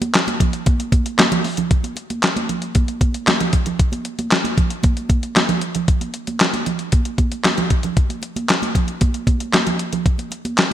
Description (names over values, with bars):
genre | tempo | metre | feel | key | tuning
funk | 115 BPM | 4/4 | straight | none | none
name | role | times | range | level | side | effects
clean 12-bit digital drum machine | drums | 0.0-10.7 s | handclaps, hi-hat, kick drum, snare drum | -16 LUFS | equal | gated reverb
congas | percussion | 0.0-10.7 s | none | -24 LUFS | right 4 dB | none
room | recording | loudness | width
light reverb | bright 1980s-style digital production | -16 LUFS | side -11 dB against mid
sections
0.0-1.7 A section; 1.7-10.7 B section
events
none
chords
none